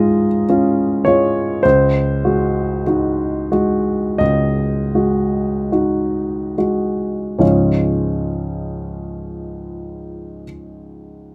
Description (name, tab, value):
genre	classical, romantic nocturne for solo piano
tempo	33-54 BPM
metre	4/4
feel	rubato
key	Db major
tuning	A4 = 439 Hz
part	warm grand piano	solo	0.0-11.3 s	Db2 to F5	-18 LUFS	equal	none
room	light reverb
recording	close, detailed microphones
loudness	-17 LUFS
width	mono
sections	0.0-7.4 A section; 7.4-11.3 B section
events	slowing down 0.0-7.4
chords	0.0 Db; 1.6 Ab7/Db; 7.4 Db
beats	0.48 | 1.63 2.86 4.21 5.72 | 7.41 8.85 10.27